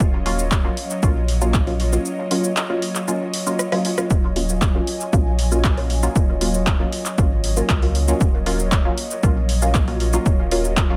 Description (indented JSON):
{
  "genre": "dub techno",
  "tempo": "117 BPM",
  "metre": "4/4",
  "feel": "straight",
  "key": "Eb minor",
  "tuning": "A4 = 442 Hz",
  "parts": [
    { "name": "airy breathy pad", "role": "sustained chords", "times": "0.0-11.0 s", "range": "Gb3 to Ab5", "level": "-30 LUFS", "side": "equal", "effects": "chorus, sidechain pumping" },
    { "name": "filtered dub chord stab", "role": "stabs", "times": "0.0-11.0 s", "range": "Gb3 to F4", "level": "-27 LUFS", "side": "equal", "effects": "chorus, phaser, sidechain pumping, dub echo" },
    { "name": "warm sub bass", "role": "bass", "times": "0.0-11.0 s", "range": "Eb1 to Db2", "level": "-24 LUFS", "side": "equal", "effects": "sidechain pumping" },
    { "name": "deep house drum kit", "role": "drums", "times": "0.0-10.9 s", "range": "handclaps, hi-hat, rim click, shaker", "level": "-28 LUFS", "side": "equal", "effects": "overdrive" },
    { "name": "electronic kick drum", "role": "drums", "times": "0.0-10.9 s", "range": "none", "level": "-21 LUFS", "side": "equal", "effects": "overdrive" }
  ],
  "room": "light reverb, digital ambience",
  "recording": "none",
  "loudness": "-20 LUFS",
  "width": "mono",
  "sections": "0.0-11.0 A section",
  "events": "break 2.1-4.1; drum fill 3.6-4.1",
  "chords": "0.0 Ebm7"
}